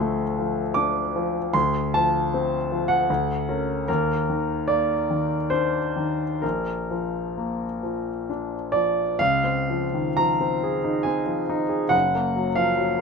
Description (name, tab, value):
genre	classical, impressionist solo piano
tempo	57-80 BPM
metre	3/4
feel	rubato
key	Bb major, Db major from 9.2 s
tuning	A4 = 436 Hz
part	clear concert grand piano	solo	0.0-13.0 s	Gb1 to D6	-21 LUFS	equal	none
room	light reverb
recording	minimal, uncompressed stereo recording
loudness	-21 LUFS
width	side -5 dB against mid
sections	0.0-9.2 A section; 9.2-13.0 B section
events	none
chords	0.0 Dm7; 1.5 F/D; 3.1 Dmaj7#5; 3.9 Eb5; 6.4 Bb; 9.2 Dbmaj9; 11.9 Gbmaj7